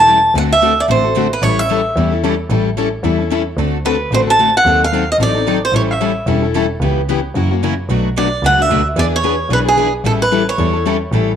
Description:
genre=acoustic string swing (jazz manouche)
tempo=223 BPM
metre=4/4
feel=swing 58% on 8ths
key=A mixolydian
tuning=A4 = 439 Hz
part: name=picked swing-style acoustic guitar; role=melody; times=0.0-11.0 s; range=G#4 to A5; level=-14 LUFS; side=right 2 dB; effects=none
part: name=picked plugged-in steel-string acoustic guitar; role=accompaniment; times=0.0-11.3 s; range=B2 to A4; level=-18 LUFS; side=left 9 dB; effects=none
part: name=clear double bass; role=bass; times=0.0-11.4 s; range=E1 to F#2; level=-18 LUFS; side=right 1 dB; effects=none
part: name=picked steel-string acoustic guitar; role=accompaniment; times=0.1-11.3 s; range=B2 to B4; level=-25 LUFS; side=right 11 dB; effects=none
room=wet spring reverb, RT60 1.0 s, studio reverb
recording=1960s-style stereo with parts hard left and right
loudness=-12 LUFS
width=side -8 dB against mid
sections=0.0-11.4 A section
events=none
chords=0.3 D7; 1.4 A7; 3.6 D7; 4.7 D#dim7; 5.7 A7; 6.8 C#m7b5; 7.4 F#7; 7.9 Bm7; 9.0 E7; 10.0 A7

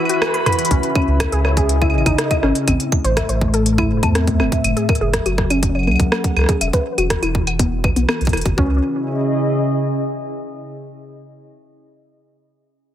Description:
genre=IDM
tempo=122 BPM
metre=4/4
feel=straight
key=C# minor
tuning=A4 = 439 Hz
part: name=warbly tape-like pad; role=sustained chords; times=0.0-10.5 s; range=A2 to B5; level=-21 LUFS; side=equal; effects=chorus, built-in reverb
part: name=warbly dusty pluck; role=arpeggios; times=0.1-8.8 s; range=A#3 to B5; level=-22 LUFS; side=left 1 dB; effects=chorus, cassette tape, ping-pong delay
part: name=organic electronic drum kit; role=drums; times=0.1-8.6 s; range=claves, hi-hat, rim click, toms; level=-22 LUFS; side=equal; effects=none
part: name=warm sub bass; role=bass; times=0.7-8.8 s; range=E1 to E2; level=-19 LUFS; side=equal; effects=none
part: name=electronic kick drum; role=drums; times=0.7-8.7 s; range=none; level=-19 LUFS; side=equal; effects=none
room=moderate plate reverb, RT60 1.5 s, digital ambience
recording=heavily compressed radio sound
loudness=-15 LUFS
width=side -11 dB against mid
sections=0.7-8.6 A section; 8.6-10.5 B section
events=break 0.0-0.7; band accent 0.2; drum fill 0.5; filter sweep on ambient pad 0.7-8.6; filter sweep on synth pluck 0.7-8.6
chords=0.0 Esus2; 0.7 C#madd9; 2.7 Am; 4.6 F#add9; 6.6 Esus2; 8.6 C#madd9

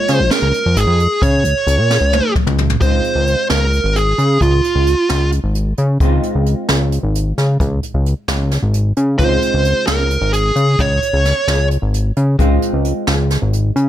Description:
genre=progressive instrumental, band music in an uneven meter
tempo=263 BPM (eighths)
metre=7/8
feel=straight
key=Db major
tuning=A4 = 440 Hz
part: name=fuzz lead guitar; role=melody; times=0.0-5.3, 9.2-11.7 s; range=F4 to Db5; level=-16 LUFS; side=right 2 dB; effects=distortion, plate reverb
part: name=hollow-body jazz guitar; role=accompaniment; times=0.0-13.9 s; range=C3 to F4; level=-23 LUFS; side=right 1 dB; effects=double-tracked left and right, plate reverb
part: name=fat analog bass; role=bass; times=0.1-13.9 s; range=Ab1 to Db3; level=-15 LUFS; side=equal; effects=none
part: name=jazz brush drum kit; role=drums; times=0.1-13.9 s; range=hi-hat, kick drum, snare drum, toms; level=-19 LUFS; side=equal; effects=none
room=light reverb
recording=none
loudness=-13 LUFS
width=side -12 dB against mid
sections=0.0-2.8 A section; 2.8-13.9 B section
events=drum fill 1.9-2.8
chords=0.0 Db6; 2.8 Dbmaj7

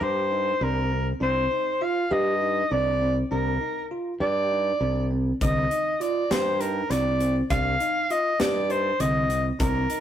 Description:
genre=progressive instrumental, band music in an uneven meter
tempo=200 BPM (eighths)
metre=7/8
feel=straight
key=C minor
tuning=A4 = 438 Hz
part: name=clear soprano saxophone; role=melody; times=0.0-10.0 s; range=Bb4 to F5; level=-25 LUFS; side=equal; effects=none
part: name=bell-like tine electric piano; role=arpeggios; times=0.0-10.0 s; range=D3 to G4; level=-31 LUFS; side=right 2 dB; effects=phaser
part: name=modern bright fingered electric bass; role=bass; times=0.0-9.9 s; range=C2 to G2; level=-26 LUFS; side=equal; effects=none
part: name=modern studio drum kit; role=drums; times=5.4-10.0 s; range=hi-hat, kick drum, snare drum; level=-30 LUFS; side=equal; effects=none
room=moderate stone room reverb, RT60 1.0 s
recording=rough rehearsal-room recording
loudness=-22 LUFS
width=side -10 dB against mid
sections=0.0-10.0 A section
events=none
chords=0.0 Cm

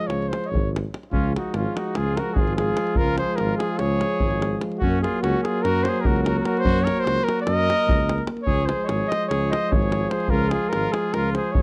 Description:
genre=balkan folk, Balkan brass band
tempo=294 BPM (eighths)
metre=9/8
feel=straight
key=Db major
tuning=A4 = 440 Hz
part: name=mellow cornet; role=melody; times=0.0-11.6 s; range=F4 to Eb5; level=-28 LUFS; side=equal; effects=none
part: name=dark euphonium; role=accompaniment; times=0.0-11.6 s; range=Ab3 to Bb3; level=-32 LUFS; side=equal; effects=none
part: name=mellow trombone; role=accompaniment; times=0.0-11.6 s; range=F3 to Gb3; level=-33 LUFS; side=equal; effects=none
part: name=davul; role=percussion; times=0.0-11.6 s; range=none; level=-28 LUFS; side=equal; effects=none
part: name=mellow tuba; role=bass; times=0.1-11.6 s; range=Ab1 to Gb2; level=-28 LUFS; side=equal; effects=none
part: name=warm trumpet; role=second line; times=1.1-11.6 s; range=Db4 to C5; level=-34 LUFS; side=equal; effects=none
room=studio reverb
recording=dry, close 1970s-style studio recording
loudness=-23 LUFS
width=mono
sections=0.0-1.1 A section; 1.1-11.6 B section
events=cornet solo 0.0-1.1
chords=0.0 Db; 4.8 Gb; 8.5 Db

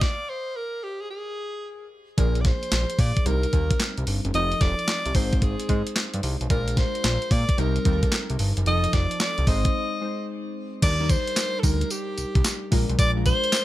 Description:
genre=R&B, new jack swing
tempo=111 BPM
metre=4/4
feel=swing 66% on 16ths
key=Eb major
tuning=A4 = 440 Hz
part: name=bright alto saxophone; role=melody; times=0.0-13.6 s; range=G4 to Eb5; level=-28 LUFS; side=equal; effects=none
part: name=warm analog keys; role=accompaniment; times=0.0-13.6 s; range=F3 to C5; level=-31 LUFS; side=equal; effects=chorus
part: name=crisp 8-bit digital drum machine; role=drums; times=0.0-13.6 s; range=crash cymbal, handclaps, hi-hat, kick drum, snare drum, tambourine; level=-23 LUFS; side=equal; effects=overdrive
part: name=fat analog bass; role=bass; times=2.2-13.3 s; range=F1 to Bb2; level=-25 LUFS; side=equal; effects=none
room=light reverb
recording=none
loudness=-21 LUFS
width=side -15 dB against mid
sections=0.0-2.2 A section; 2.2-10.8 B section; 10.8-13.6 C section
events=stop 0.0-2.2; break 9.7-10.8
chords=0.0 N.C.; 2.2 Bb7; 3.3 Cm7; 4.3 F7; 5.1 Ab; 6.5 Bb7; 7.6 Cm7; 8.7 F7; 9.5 Ab; 10.8 Ebmaj7; 12.7 Bb7

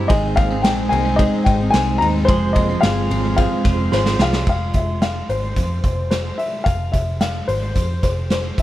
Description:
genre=jangly indie pop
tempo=110 BPM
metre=4/4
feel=straight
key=F minor, F harmonic minor from 4.5 s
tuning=A4 = 437 Hz
part: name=glockenspiel with soft plastic mallets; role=second line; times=0.0-4.4 s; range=Ab5 to C6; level=-32 LUFS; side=right 5 dB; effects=none
part: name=mellow reed electric piano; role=accompaniment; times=0.0-4.5 s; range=Eb4 to C5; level=-28 LUFS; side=right 8 dB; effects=fast tremolo
part: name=picked steel-string acoustic guitar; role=accompaniment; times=0.0-4.5 s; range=F2 to Ab4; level=-26 LUFS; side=right 6 dB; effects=none
part: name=warm analog pad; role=sustained chords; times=0.0-4.4 s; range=F3 to Ab4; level=-29 LUFS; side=left 4 dB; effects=none
part: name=twelve-string electric guitar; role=arpeggios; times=0.0-5.0 s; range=Ab3 to F4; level=-25 LUFS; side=left 4 dB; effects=none
part: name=vintage muted picked electric bass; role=bass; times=0.0-8.5 s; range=F1 to F2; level=-22 LUFS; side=equal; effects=none
part: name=dark upright piano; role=melody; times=0.1-8.6 s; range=C5 to Bb5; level=-22 LUFS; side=left 4 dB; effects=none
part: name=raw garage drum kit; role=drums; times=0.1-8.6 s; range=crash cymbal, hi-hat, kick drum, ride cymbal, snare drum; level=-21 LUFS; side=equal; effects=none
room=little or no reverb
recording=none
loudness=-16 LUFS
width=side -14 dB against mid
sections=0.0-4.5 A section; 4.5-8.6 B section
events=drum fill 3.9-4.5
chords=0.1 Ab; 2.3 Fm

